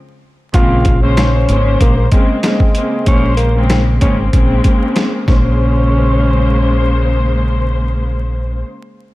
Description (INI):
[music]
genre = hip hop, boom-bap hip-hop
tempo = 95 BPM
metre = 4/4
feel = swing 55% on 16ths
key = Bb minor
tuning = A4 = 442 Hz
[part]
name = growling tenor saxophone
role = melody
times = 0.5-7.5 s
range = Ab3 to F4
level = -19 LUFS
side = equal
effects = high-pass filter, low-pass filter
[part]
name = rich studio string section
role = accompaniment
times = 0.5-8.6 s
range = Db3 to C5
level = -17 LUFS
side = left 1 dB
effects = high-pass filter, low-pass filter
[part]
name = deep dub fingered electric bass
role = bass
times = 0.5-8.6 s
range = Ab1 to Bb1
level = -14 LUFS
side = equal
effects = none
[part]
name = boom bap sampler-style drum kit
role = drums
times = 0.5-5.4 s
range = hi-hat, kick drum, snare drum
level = -13 LUFS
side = equal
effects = overdrive
[sound]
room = small room ambience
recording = dark, warm production, vinyl crackle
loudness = -11 LUFS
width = side -18 dB against mid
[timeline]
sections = 0.5-5.6 A section; 5.6-8.1 B section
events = break 0.0-0.5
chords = 0.0 N.C.; 0.5 Bbm9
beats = | 0.54 1.17 1.80 2.44 | 3.07 3.70 4.33 4.96 | 5.59 6.22 6.86 7.49